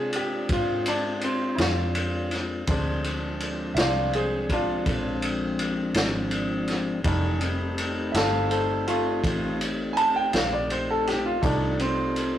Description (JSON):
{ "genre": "slow blues", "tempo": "55 BPM (dotted quarters)", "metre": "12/8", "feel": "straight", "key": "unclear", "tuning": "A4 = 441 Hz", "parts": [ { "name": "bright upright piano", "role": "accompaniment", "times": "0.0-12.4 s", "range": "G3 to A5", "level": "-26 LUFS", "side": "right 1 dB", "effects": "none" }, { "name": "mellow tonewheel organ", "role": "sustained chords", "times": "0.0-12.4 s", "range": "E3 to Ab5", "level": "-30 LUFS", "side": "left 1 dB", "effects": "slow rotary speaker" }, { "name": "vintage muted fingered electric bass", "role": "bass", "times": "0.0-12.4 s", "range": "F1 to C3", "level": "-31 LUFS", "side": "equal", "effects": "none" }, { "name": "vintage drum kit", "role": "drums", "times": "0.1-12.3 s", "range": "kick drum, ride cymbal, snare drum", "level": "-28 LUFS", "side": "equal", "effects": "none" } ], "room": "moderate stone room reverb, RT60 1.1 s", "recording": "rough rehearsal-room recording, warm saturation", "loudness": "-23 LUFS", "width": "side -11 dB against mid", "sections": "0.0-12.4 A section", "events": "upright piano solo 0.0-12.4", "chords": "0.0 Bb9; 7.1 F9" }